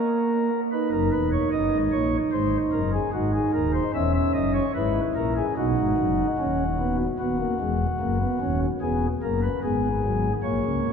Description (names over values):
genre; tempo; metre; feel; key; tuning
classical, baroque-style 4-part fugue for pipe organ; 74 BPM; 4/4; straight; B major; A4 = 440 Hz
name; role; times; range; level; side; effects
pipe organ, flutes; solo; 0.0-10.9 s; D#1 to E5; -22 LUFS; equal; none
room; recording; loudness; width
wet cathedral reverb, RT60 5.7 s; in a vast, echoing space; -22 LUFS; side -6 dB against mid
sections
0.0-7.2 A section; 7.2-10.9 B section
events
none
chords
0.0 N.C.; 0.7 B; 2.3 G#7; 3.9 C#m/E; 5.6 B; 7.2 B/D#; 8.8 E